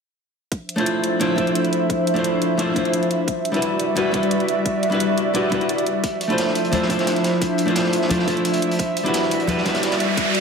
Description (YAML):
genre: liquid drum and bass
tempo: 174 BPM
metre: 4/4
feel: straight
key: D dorian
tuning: A4 = 440 Hz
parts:
  - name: airy breathy pad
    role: sustained chords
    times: 0.7-10.4 s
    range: F3 to E5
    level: -22 LUFS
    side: right 1 dB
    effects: chorus, sidechain pumping
  - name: electronic hi-hat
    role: drums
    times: 0.5-10.4 s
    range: none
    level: -31 LUFS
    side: right 2 dB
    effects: overdrive
  - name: electronic kick drum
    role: drums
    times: 0.5-10.2 s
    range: none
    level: -27 LUFS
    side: equal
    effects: overdrive, high-pass filter on kick
  - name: archtop guitar, miked and amplified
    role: accompaniment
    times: 0.8-10.4 s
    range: G3 to C5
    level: -21 LUFS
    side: left 1 dB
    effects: lush chorus, ping-pong delay
  - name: crunchy breakbeat drum kit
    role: drums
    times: 6.0-10.4 s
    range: hi-hat, snare drum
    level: -29 LUFS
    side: equal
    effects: high-pass filter on hats, high-pass filter on snare, high-pass filter on room
  - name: congas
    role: percussion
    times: 6.7-9.6 s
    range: none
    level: -28 LUFS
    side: left 3 dB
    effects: none
  - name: riser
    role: sound effects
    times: 9.4-10.4 s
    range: none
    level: -25 LUFS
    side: right 2 dB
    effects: none
room: wet lush hall reverb, RT60 2.1 s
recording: dreamy mix soaked in reverb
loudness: -18 LUFS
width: side -5 dB against mid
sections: 0.5-10.4 A section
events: filter sweep on analog synth pad 0.5-10.4; riser 9.4-10.4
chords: 0.5 Dm9; 3.3 Em9; 6.0 Dm9; 8.8 Em9